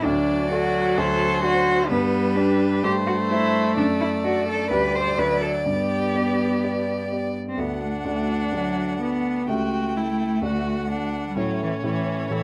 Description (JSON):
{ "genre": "quick classical-period movement for piano quartet", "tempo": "128 BPM", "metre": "4/4", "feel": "rubato", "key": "G major, D major from 7.6 s", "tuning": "A4 = 439 Hz", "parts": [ { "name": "rich violin", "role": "melody", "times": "0.0-12.4 s", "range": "B4 to G5", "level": "-31 LUFS", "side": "equal", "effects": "none" }, { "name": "warm cello", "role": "second line", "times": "0.0-12.4 s", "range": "E3 to C5", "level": "-27 LUFS", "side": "equal", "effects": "none" }, { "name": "rich viola", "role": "accompaniment", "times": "0.0-12.4 s", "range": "F#3 to F#4", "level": "-30 LUFS", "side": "equal", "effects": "none" }, { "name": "warm grand piano", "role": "accompaniment", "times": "0.0-12.4 s", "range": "C#2 to E5", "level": "-29 LUFS", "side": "equal", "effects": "none" } ], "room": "light reverb", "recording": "close, detailed microphones", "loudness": "-23 LUFS", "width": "mono", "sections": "0.0-7.6 A section; 7.6-12.4 B section", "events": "none", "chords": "0.1 D; 1.0 D7; 1.9 G; 2.8 Am7/G; 3.8 D/F#; 4.7 G/D; 5.2 D; 5.7 G; 7.6 D; 9.5 A7/C#; 10.4 D; 11.4 A", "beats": "| 0.05 0.52 0.98 1.44 | 1.90 2.37 2.83 3.30 | 3.77 4.24 4.71 5.18 | 5.66 6.15 6.64 7.12 | 7.60 8.08 8.55 9.02 | 9.49 9.96 10.44 10.91 | 11.38 11.85 12.32" }